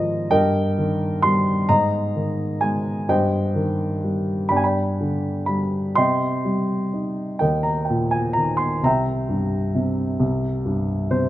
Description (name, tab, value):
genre	classical, lyrical solo piano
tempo	42 BPM (dotted quarters)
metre	6/8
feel	rubato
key	C minor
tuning	A4 = 436 Hz
part	dark grand piano	solo	0.0-11.3 s	C2 to C6	-19 LUFS	equal	none
room	moderate recital hall reverb, RT60 1.7 s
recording	close, detailed microphones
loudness	-19 LUFS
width	side -14 dB against mid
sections	0.0-11.3 A section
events	none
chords	0.3 Eb/G; 1.7 Absus2; 3.1 Cm/G; 4.5 G; 6.0 Cm; 7.4 Eb5; 8.8 C7